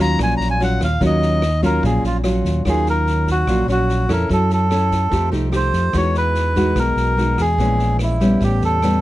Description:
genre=bossa nova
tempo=146 BPM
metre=4/4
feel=straight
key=Eb minor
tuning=A4 = 441 Hz
part: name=melodica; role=melody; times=0.0-9.0 s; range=Fb4 to Bb5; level=-20 LUFS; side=equal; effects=none
part: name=nylon-string guitar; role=accompaniment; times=0.0-9.0 s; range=A2 to A4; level=-20 LUFS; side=equal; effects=none
part: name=fingered electric bass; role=bass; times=0.0-9.0 s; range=A1 to Gb2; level=-20 LUFS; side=equal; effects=none
part: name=vintage drum kit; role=drums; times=0.2-8.9 s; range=kick drum, rim click, snare drum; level=-28 LUFS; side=equal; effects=none
room=light reverb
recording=dry, close 1970s-style studio recording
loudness=-15 LUFS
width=side -15 dB against mid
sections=0.0-2.6 A section; 2.6-9.0 B section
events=melodica solo 0.0-2.6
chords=0.0 Ebm9; 4.3 Gbm7; 5.1 F9; 5.9 Emaj9; 7.6 Bbm7b5; 8.4 A9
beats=0.19 0.60 | 1.01 1.42 1.83 2.24 | 2.65 3.06 3.47 3.88 | 4.29 4.70 5.11 5.53 | 5.94 6.35 6.76 7.17 | 7.58 7.99 8.41 8.82

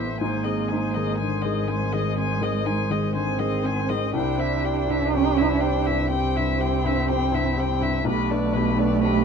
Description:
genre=neoclassical piano and strings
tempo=61 BPM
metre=4/4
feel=rubato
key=unclear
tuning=A4 = 440 Hz
part: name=muted violin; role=melody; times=0.0-9.2 s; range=B4 to Ab5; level=-28 LUFS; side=left 7 dB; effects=none
part: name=muted cello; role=second line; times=0.0-9.2 s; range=Ab3 to D4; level=-26 LUFS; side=right 7 dB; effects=none
part: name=felt-muted upright piano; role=accompaniment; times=0.0-9.2 s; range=B1 to E4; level=-28 LUFS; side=left 5 dB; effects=none
part: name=muted viola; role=accompaniment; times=0.0-9.2 s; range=E4 to C5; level=-33 LUFS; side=right 3 dB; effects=none
part: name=hand-pumped harmonium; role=sustained chords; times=0.0-9.2 s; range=D4 to E5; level=-35 LUFS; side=left 1 dB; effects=none
part: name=muted double bass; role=bass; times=0.0-9.2 s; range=Ab1 to C2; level=-27 LUFS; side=equal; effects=none
room=light reverb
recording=minimal, uncompressed stereo recording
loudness=-21 LUFS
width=side -6 dB against mid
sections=0.0-9.2 A section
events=none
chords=0.2 Ab; 4.1 C; 8.1 G/B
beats=| 0.21 1.20 2.18 3.15 | 4.14 5.13 6.10 7.09 | 8.07 9.04

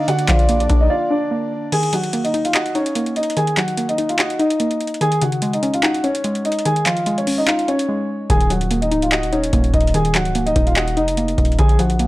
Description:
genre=hip hop, trap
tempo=146 BPM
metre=4/4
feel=half-time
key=Eb minor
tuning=A4 = 440 Hz
part: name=warm concert grand piano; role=melody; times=0.0-12.1 s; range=Db4 to Ab5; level=-21 LUFS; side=equal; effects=low-pass filter
part: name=warm velvety synth lead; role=second line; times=0.0-1.7 s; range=D5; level=-26 LUFS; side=equal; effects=chorus, tape echo
part: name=warbly dusty pluck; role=accompaniment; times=0.0-12.1 s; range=Db3 to Eb5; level=-21 LUFS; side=equal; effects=chorus, low-pass filter
part: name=airy breathy pad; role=sustained chords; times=0.0-1.7 s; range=D3 to D4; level=-31 LUFS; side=right 2 dB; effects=chorus
part: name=booming analog drum machine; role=drums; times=0.1-12.1 s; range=crash cymbal, handclaps, hi-hat, kick drum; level=-20 LUFS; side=equal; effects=none
part: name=distorted 808-style bass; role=bass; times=0.3-0.9, 8.3-12.1 s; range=Db1 to Bb1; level=-20 LUFS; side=equal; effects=distortion
room=digital ambience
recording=dry, gritty hardware recording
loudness=-16 LUFS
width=side -18 dB against mid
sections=0.0-1.7 A section; 1.7-12.1 B section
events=break 0.9-1.7, 1.7-8.3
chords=0.0 Bb; 1.7 Ebm; 5.0 Dbadd9; 8.3 Ebm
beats=| 0.08 0.49 0.90 1.31 | 1.72 2.13 2.54 2.96 | 3.37 3.78 4.19 4.60 | 5.01 5.42 5.83 6.24 | 6.66 7.07 7.48 7.89 | 8.30 8.71 9.12 9.53 | 9.94 10.35 10.76 11.18 | 11.59 12.00

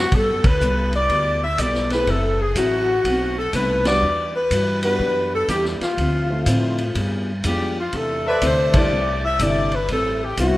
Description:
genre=jazz, big band swing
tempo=123 BPM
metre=4/4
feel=swing 66% on 8ths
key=G major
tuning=A4 = 440 Hz
part: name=clear saxophone section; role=melody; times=0.0-10.6 s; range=F4 to E5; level=-21 LUFS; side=left 1 dB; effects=none
part: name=upright bass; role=bass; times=0.0-10.6 s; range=F#1 to A2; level=-24 LUFS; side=equal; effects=none
part: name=picked acoustic archtop guitar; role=accompaniment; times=0.1-10.6 s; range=A2 to A4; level=-28 LUFS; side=left 2 dB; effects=none
part: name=vintage drum kit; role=drums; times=0.1-10.5 s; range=hi-hat, kick drum, ride cymbal, snare drum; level=-25 LUFS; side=equal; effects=none
part: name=warm grand piano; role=accompaniment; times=1.9-10.6 s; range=G3 to E5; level=-29 LUFS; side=right 1 dB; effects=none
part: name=warm trumpet section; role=stabs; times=8.3-8.9 s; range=A4 to E5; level=-25 LUFS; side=equal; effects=none
room=moderate plate reverb, RT60 2.0 s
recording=rough home demo mix, lossy compression artefacts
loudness=-18 LUFS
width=side -17 dB against mid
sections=0.1-10.6 A section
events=band accent 0.4, 3.8, 8.7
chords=0.1 Gmaj9; 2.1 F#m7b5; 3.0 B7b9; 4.0 Em9; 6.0 Dm9; 7.0 G7b9; 7.9 C69; 9.9 Am7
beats=| 0.12 0.60 1.09 1.58 | 2.07 2.56 3.04 3.53 | 4.02 4.51 5.00 5.49 | 5.98 6.46 6.95 7.44 | 7.93 8.42 8.91 9.40 | 9.89 10.38

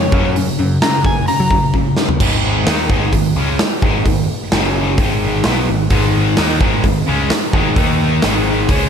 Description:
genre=classic rock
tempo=130 BPM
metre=4/4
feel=straight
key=unclear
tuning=A4 = 440 Hz
part: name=electric slide guitar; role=melody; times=0.0-2.2 s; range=Db5 to Bb5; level=-20 LUFS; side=left 2 dB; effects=slapback echo
part: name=distorted electric guitar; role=riff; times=0.0-8.9 s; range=Gb2 to Eb4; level=-21 LUFS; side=right 8 dB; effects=distortion
part: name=overdriven electric guitar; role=riff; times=0.0-8.9 s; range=Gb2 to Eb4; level=-20 LUFS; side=left 9 dB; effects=harmonic tremolo
part: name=growling picked electric bass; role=bass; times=0.0-8.9 s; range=Gb1 to Gb3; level=-20 LUFS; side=equal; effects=overdrive
part: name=big rock drum kit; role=drums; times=0.1-8.8 s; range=crash cymbal, hi-hat, kick drum, snare drum, toms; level=-16 LUFS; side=equal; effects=none
part: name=crunchy overdriven guitar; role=riff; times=5.9-8.9 s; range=Ab2 to Eb4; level=-20 LUFS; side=left 1 dB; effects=none
room=moderate recital hall reverb, RT60 1.5 s, small room ambience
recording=big arena sound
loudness=-13 LUFS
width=side -7 dB against mid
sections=0.0-2.2 A section; 2.2-8.9 B section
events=electric slide guitar solo 0.0-2.2; drum fill 1.7-2.2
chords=0.1 Gb; 2.2 Ab5; 4.5 Gb5; 5.0 Ab5; 7.8 Eb5; 8.2 Ab5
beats=| 0.36 0.82 1.28 1.74 | 2.21 2.67 3.13 3.60 | 4.06 4.52 4.99 5.45 | 5.91 6.38 6.84 7.30 | 7.76 8.23 8.69

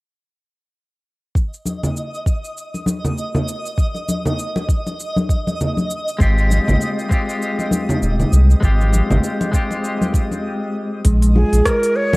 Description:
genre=organic downtempo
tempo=99 BPM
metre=4/4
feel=swing 58% on 16ths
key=unclear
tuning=A4 = 441 Hz
part: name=electronic kick drum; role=drums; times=1.4-11.8 s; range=none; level=-17 LUFS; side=equal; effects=cassette tape
part: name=organic electronic drum kit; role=drums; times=1.4-12.2 s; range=congas, hi-hat, rim click, shaker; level=-28 LUFS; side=equal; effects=cassette tape
part: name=twinkling granular texture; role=texture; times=1.7-12.2 s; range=Eb5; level=-30 LUFS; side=right 1 dB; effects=built-in reverb, cassette tape
part: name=congas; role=percussion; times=1.7-12.2 s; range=none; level=-21 LUFS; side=equal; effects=none
part: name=clean electric guitar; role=accompaniment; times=6.2-11.0 s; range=Ab3 to G4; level=-22 LUFS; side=left 2 dB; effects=harmonic tremolo, sidechain pumping, cassette tape, analog delay
part: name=warm sub bass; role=bass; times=6.2-11.6 s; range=Eb1 to C2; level=-14 LUFS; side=equal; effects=none
part: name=steel tongue drum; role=arpeggios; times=11.0-11.5 s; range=Ab3 to F4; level=-21 LUFS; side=equal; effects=cassette tape
part: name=breathy Native American-style cedar flute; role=melody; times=11.4-12.2 s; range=Ab4 to Db5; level=-17 LUFS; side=right 1 dB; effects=cassette tape
room=light reverb, digital ambience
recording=home recording on cassette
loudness=-16 LUFS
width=side -23 dB against mid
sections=1.4-11.0 A section; 11.0-12.2 B section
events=break 10.4-11.0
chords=1.4 N.C.; 6.2 Fmadd9; 11.0 Bb7(no3)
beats=| 1.35 1.96 2.56 3.17 | 3.78 4.38 4.99 5.59 | 6.20 6.81 7.41 8.02 | 8.62 9.23 9.84 10.44 | 11.05 11.65

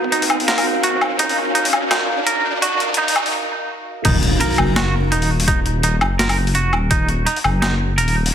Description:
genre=half-time drum and bass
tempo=168 BPM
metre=4/4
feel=swing 56% on 16ths, half-time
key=Eb minor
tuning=A4 = 439 Hz
part: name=deep dark ambient pad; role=sustained chords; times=0.0-4.1 s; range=Eb4 to F5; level=-25 LUFS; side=right 1 dB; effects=chorus, built-in reverb, sidechain pumping
part: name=electronic kick drum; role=drums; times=0.0-7.0 s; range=none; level=-21 LUFS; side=left 1 dB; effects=overdrive, high-pass filter on kick, high-pass filter on room
part: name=riser and impact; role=sound effects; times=0.0-5.5 s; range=none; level=-24 LUFS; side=equal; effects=none
part: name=twangy electric guitar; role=arpeggios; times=0.1-8.1 s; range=Eb4 to Bb4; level=-20 LUFS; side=right 3 dB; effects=tremolo, digital delay
part: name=boom bap sampler-style drum kit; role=drums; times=0.1-8.3 s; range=crash cymbal, hi-hat, snare drum, woodblock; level=-21 LUFS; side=left 2 dB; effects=overdrive, high-pass filter on hats, high-pass filter on perc, high-pass filter on snare, high-pass filter on cymbals, high-pass filter on room
part: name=dark detuned saw bass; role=bass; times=4.1-8.3 s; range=Eb1 to Gb1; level=-19 LUFS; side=equal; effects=none
room=moderate echo chamber reverb, RT60 2.1 s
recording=high-pass filter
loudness=-15 LUFS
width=side -9 dB against mid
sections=0.0-4.0 A section; 4.0-8.3 B section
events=build-up 0.0-4.0; riser 0.0-3.3; break 3.3-4.0; drop 4.0-8.3; impact 4.0-5.5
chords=0.0 Ebm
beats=0.12 0.48 0.84 | 1.19 1.55 1.91 2.27 | 2.62 2.98 3.34 3.69 | 4.05 4.41 4.76 5.12 | 5.48 5.84 6.19 6.55 | 6.91 7.26 7.62 7.98 | 8.34

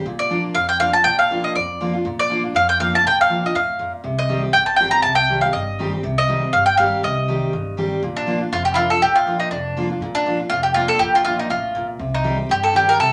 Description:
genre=bluegrass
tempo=241 BPM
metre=4/4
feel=swing 55% on 8ths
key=unclear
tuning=A4 = 441 Hz
part: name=picked steel-string acoustic guitar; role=accompaniment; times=0.0-13.1 s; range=F2 to G4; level=-27 LUFS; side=equal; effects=none
part: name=upright bass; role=bass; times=0.1-13.1 s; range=F1 to G2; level=-31 LUFS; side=equal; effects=none
part: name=mandolin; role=melody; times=0.2-13.1 s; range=D4 to Bb5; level=-19 LUFS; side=equal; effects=none
room=wet club reverb, RT60 0.6 s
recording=none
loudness=-19 LUFS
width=mono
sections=0.1-8.0 A section; 8.0-13.1 A section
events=none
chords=0.1 Bb; 4.0 Cm; 8.0 Bb; 12.0 Cm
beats=| 0.06 0.31 0.56 0.81 | 1.05 1.30 1.55 1.80 | 2.05 2.30 2.55 2.80 | 3.05 3.30 3.54 3.79 | 4.04 4.29 4.54 4.79 | 5.04 5.29 5.54 5.79 | 6.03 6.28 6.53 6.78 | 7.03 7.28 7.53 7.78 | 8.02 8.27 8.52 8.77 | 9.02 9.27 9.51 9.76 | 10.01 10.26 10.51 10.76 | 11.00 11.25 11.50 11.75 | 11.99 12.24 12.49 12.74 | 12.99

